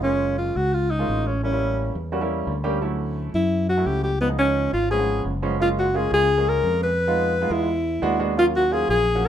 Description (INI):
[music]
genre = jazz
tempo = 173 BPM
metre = 4/4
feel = straight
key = F# major from 5.6 s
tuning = A4 = 439 Hz
[part]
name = clear alto saxophone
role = melody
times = 0.0-9.3 s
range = B3 to B4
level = -21 LUFS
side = left 1 dB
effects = none
[part]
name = warm grand piano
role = accompaniment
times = 0.0-9.3 s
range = E#3 to G#4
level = -26 LUFS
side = right 3 dB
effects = none
[part]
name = fingered electric bass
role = bass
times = 0.0-9.3 s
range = F#1 to F#2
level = -26 LUFS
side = left 1 dB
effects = none
[sound]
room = light reverb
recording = minimal, uncompressed stereo recording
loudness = -20 LUFS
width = side -10 dB against mid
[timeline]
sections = 0.0-5.6 A section; 5.6-9.3 B section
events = none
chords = 0.0 F#maj9; 1.4 A7b9; 2.8 Dmaj9; 4.2 C#7; 5.6 F#maj7; 7.0 Fm7b5; 7.7 E9; 8.4 D#m7